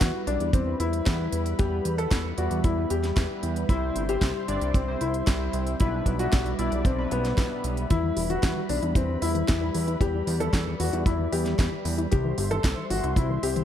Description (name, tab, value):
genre	italo disco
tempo	114 BPM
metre	4/4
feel	straight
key	E minor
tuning	A4 = 439 Hz
part	warm baby grand piano	melody	0.0-13.6 s	B3 to A4	-29 LUFS	left 4 dB	digital delay
part	warm analog pad	sustained chords	0.0-13.6 s	G3 to C6	-34 LUFS	right 2 dB	chorus
part	chorused polysynth	stabs	0.0-7.9 s	B2 to D5	-35 LUFS	right 3 dB	none
part	fat analog bass	bass	0.0-13.6 s	E1 to E2	-29 LUFS	equal	none
part	house drum kit	drums	0.0-13.6 s	hi-hat, snare drum	-33 LUFS	right 1 dB	studio reverb
part	kick drum	drums	0.0-13.3 s	none	-24 LUFS	equal	studio reverb
part	wide unison pluck	arpeggios	7.9-13.6 s	E3 to E5	-34 LUFS	left 4 dB	cassette tape, ping-pong delay
room	light reverb, small room ambience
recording	dark, warm production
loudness	-23 LUFS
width	side -10 dB against mid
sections	0.0-13.6 A section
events	none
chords	0.0 Em; 3.7 C; 5.8 G6/B; 7.9 Em; 12.1 C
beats	0.01 0.54 1.06 | 1.59 2.12 2.64 3.17 | 3.69 4.22 4.75 5.27 | 5.80 6.33 6.85 7.38 | 7.90 8.43 8.96 9.48 | 10.01 10.54 11.06 11.59 | 12.12 12.64 13.17